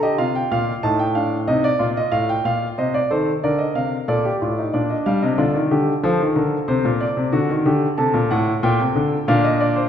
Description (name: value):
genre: classical, baroque-style 3-part fugue for grand piano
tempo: 93 BPM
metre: 4/4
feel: straight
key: G minor from 4.7 s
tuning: A4 = 440 Hz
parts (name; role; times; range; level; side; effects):
- warm concert grand piano; solo; 0.0-9.9 s; A2 to A5; -17 LUFS; equal; none
room: wet recital hall reverb, RT60 1.7 s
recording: recorded in a church or concert hall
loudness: -17 LUFS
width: side -9 dB against mid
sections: 0.0-4.7 A section; 4.7-9.9 B section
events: none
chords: 0.0 Bb; 0.8 F7/A; 4.7 Gm/Bb; 6.0 F (rootless); 7.3 D7; 8.6 Gm/Bb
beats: 0.19 0.83 1.48 | 2.13 2.78 3.43 4.09 | 4.74 5.39 6.05 6.69 | 7.34 7.98 8.63 9.27